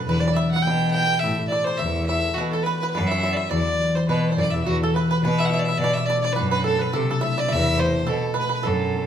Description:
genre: celtic folk, Celtic reel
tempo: 210 BPM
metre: 4/4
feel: swing 57% on 8ths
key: E minor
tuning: A4 = 440 Hz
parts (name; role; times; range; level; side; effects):
- rich fiddle; melody; 0.0-9.1 s; F#4 to G5; -24 LUFS; right 1 dB; none
- bluegrass banjo; second line; 0.0-9.1 s; F#4 to G5; -28 LUFS; right 3 dB; none
- concert harp; accompaniment; 0.0-9.1 s; B2 to D5; -24 LUFS; left 2 dB; none
- clear cello; bass; 0.0-9.1 s; E2 to C3; -26 LUFS; equal; none
room: wet stone room reverb, RT60 1.1 s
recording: band playing live in one room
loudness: -19 LUFS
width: side -9 dB against mid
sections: 0.0-4.7 A section; 4.7-9.1 A section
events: none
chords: 0.1 Em; 1.2 Am; 2.4 Bm; 3.5 Emadd9; 5.8 Bm7; 6.9 Am/C; 8.1 Bm7

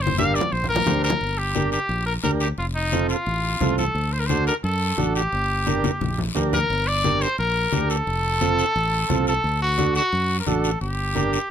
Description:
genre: latin, cumbia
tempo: 175 BPM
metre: 4/4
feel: straight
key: G minor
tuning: A4 = 440 Hz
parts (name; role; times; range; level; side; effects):
- clear trumpet; melody; 0.0-11.5 s; Eb4 to F5; -23 LUFS; equal; none
- fingered electric bass; bass; 0.0-11.4 s; F1 to F#2; -25 LUFS; equal; none
- congas; percussion; 0.1-11.3 s; none; -28 LUFS; left 4 dB; none
- combo organ; accompaniment; 0.2-11.4 s; C4 to C5; -25 LUFS; right 4 dB; none
- guiro; percussion; 0.2-11.5 s; none; -34 LUFS; left 5 dB; none
room: light reverb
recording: close, detailed microphones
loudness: -20 LUFS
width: side -9 dB against mid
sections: 0.0-1.2 A section; 1.2-11.5 B section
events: drum fill 0.0-1.2, 5.8-6.7; trumpet solo 0.0-1.2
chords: 0.0 Gm; 2.6 F; 4.0 D; 5.3 Gm; 8.1 F; 9.4 D; 10.8 Gm

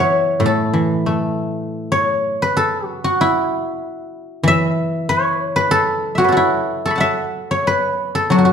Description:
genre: chinese traditional, Chinese solo plucked strings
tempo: 93 BPM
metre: 2/4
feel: uneven beats, rubato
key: A gong mode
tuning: A4 = 439 Hz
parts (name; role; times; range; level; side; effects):
- guzheng; solo; 0.0-8.5 s; A2 to C#6; -15 LUFS; equal; none
room: moderate large studio reverb, RT60 1.3 s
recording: band playing live in one room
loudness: -16 LUFS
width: side -7 dB against mid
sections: 0.0-1.9 A section; 1.9-8.5 B section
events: none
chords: none

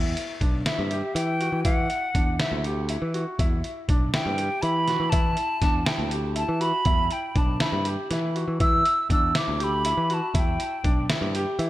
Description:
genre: progressive instrumental, band music in an uneven meter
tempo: 242 BPM (eighths)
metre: 7/8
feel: straight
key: E minor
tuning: A4 = 439 Hz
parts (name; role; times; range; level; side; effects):
- clear concert grand piano; arpeggios; 0.0-11.7 s; D4 to G4; -31 LUFS; left 1 dB; slapback echo
- picked electric bass; bass; 0.0-11.7 s; B1 to E3; -27 LUFS; equal; none
- trip hop sampler-style drum kit; drums; 0.2-11.7 s; hi-hat, kick drum, snare drum; -26 LUFS; equal; none
- hollow concert flute; melody; 0.7-11.1 s; E5 to E6; -26 LUFS; equal; digital delay
room: moderate lush hall reverb, RT60 1.9 s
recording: big arena sound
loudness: -22 LUFS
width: side -15 dB against mid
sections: 0.0-11.7 A section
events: flute solo 0.0-11.7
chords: 0.0 Em

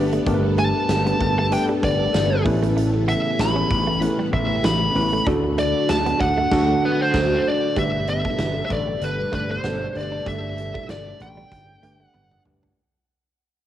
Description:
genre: 1980s-style pop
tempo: 96 BPM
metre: 4/4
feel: swing 55% on 16ths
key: unclear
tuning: A4 = 440 Hz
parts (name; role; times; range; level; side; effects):
- warm analog keys; accompaniment; 0.0-12.8 s; G2 to D5; -24 LUFS; equal; chorus, cassette tape
- string machine, full ensemble; sustained chords; 0.0-12.7 s; B2 to A4; -30 LUFS; equal; ensemble chorus, cassette tape
- mellow synth brass; stabs; 0.0-9.9 s; D3 to B4; -31 LUFS; left 1 dB; none
- vintage slap bass; bass; 0.0-12.7 s; G1 to D2; -26 LUFS; equal; none
- direct-recorded clean electric guitar; riff; 0.1-12.7 s; E3 to D4; -31 LUFS; right 4 dB; analog chorus, cassette tape
- huge arena drum kit; drums; 0.1-12.8 s; crash cymbal, hi-hat, kick drum, snare drum, tambourine, toms; -28 LUFS; equal; cassette tape
- high-gain lead guitar; melody; 0.6-12.4 s; B4 to B5; -24 LUFS; equal; distortion, tape echo
room: moderate spring reverb, RT60 2.6 s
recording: home recording on cassette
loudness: -18 LUFS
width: side -11 dB against mid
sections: 0.0-7.8 A section; 7.8-12.8 B section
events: band accent 6.5-7.8; fade-out 7.8-12.8; drum fill 12.1-12.8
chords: 0.0 Gadd9; 2.5 Aadd9; 5.3 D; 7.8 Gadd9

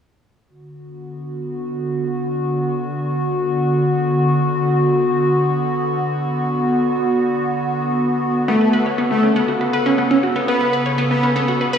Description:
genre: techno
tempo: 120 BPM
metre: 4/4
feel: straight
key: B minor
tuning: A4 = 437 Hz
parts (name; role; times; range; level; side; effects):
- evolving wavetable pad; sustained chords; 1.0-11.8 s; C#3 to A4; -18 LUFS; equal; chorus, built-in reverb
- mellow synth brass; melody; 8.5-11.3 s; A4 to B4; -25 LUFS; equal; chorus, dub echo
- soft supersaw; second line; 8.5-11.3 s; A3 to B3; -21 LUFS; left 1 dB; dub echo
- wide unison pluck; arpeggios; 8.5-11.8 s; B3 to C#5; -19 LUFS; right 1 dB; dub echo
room: wet lush hall reverb, RT60 2.4 s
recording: played on a big sound system in a bare room, stone room reverb, studio ambience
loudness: -16 LUFS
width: side -7 dB against mid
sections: 0.5-11.8 A section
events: filter sweep on ambient pad 0.5-11.8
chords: 0.5 Bm; 8.5 Aadd9

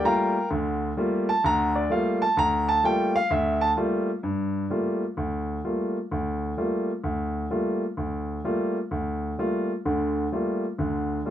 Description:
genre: jazz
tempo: 128 BPM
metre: 4/4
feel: swing 66% on 8ths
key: G minor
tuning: A4 = 440 Hz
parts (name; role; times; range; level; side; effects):
- warm baby grand piano; solo; 0.0-11.3 s; D2 to Bb5; -23 LUFS; equal; none
room: moderate small room ambience, RT60 0.5 s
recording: dark, warm production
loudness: -23 LUFS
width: side -11 dB against mid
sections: 0.0-4.2 A section; 4.2-11.3 B section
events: none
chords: 0.0 Gm9

